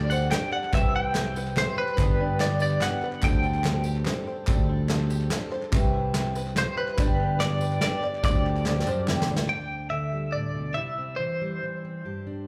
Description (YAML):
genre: indie folk with a building arrangement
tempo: 144 BPM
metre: 3/4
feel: straight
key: unclear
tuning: A4 = 440 Hz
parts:
  - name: twelve-string electric guitar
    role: melody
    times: 0.0-3.8, 6.6-11.8 s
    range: B4 to G5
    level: -32 LUFS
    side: equal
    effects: tremolo, slapback echo, analog delay
  - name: felt-muted upright piano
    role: accompaniment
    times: 0.0-9.5 s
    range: G1 to G5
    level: -37 LUFS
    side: equal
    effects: slapback echo
  - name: picked twelve-string acoustic guitar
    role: accompaniment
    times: 0.0-9.5 s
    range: C3 to B4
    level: -36 LUFS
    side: equal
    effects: slapback echo
  - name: open-back banjo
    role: arpeggios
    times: 0.0-9.5 s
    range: B3 to D5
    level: -38 LUFS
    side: equal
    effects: slapback echo
  - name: picked electric bass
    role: bass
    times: 0.0-9.5 s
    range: G1 to F#2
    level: -30 LUFS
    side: equal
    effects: none
  - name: group handclap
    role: percussion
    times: 0.0-9.3 s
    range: none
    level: -43 LUFS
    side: equal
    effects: slapback echo
  - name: tambourine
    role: percussion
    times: 0.1-9.3 s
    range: none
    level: -49 LUFS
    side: equal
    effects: none
  - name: soft brush drum kit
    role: drums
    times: 0.3-9.5 s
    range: hi-hat, kick drum, snare drum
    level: -29 LUFS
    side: equal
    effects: none
  - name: fingerpicked plugged-in steel-string acoustic guitar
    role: accompaniment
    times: 9.5-12.5 s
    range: D2 to G4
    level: -34 LUFS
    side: equal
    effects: none
room: light reverb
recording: live gig heard through the venue's PA, club reverb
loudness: -26 LUFS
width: mono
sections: 0.0-9.5 A section; 9.5-12.5 B section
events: felt piano fill 3.7-4.5; drum fill 8.7-9.5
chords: 0.0 D7sus4; 0.7 Cmaj7; 2.0 G; 3.2 D7sus4; 5.7 Cmaj7; 7.0 G; 8.2 D7sus4; 10.8 C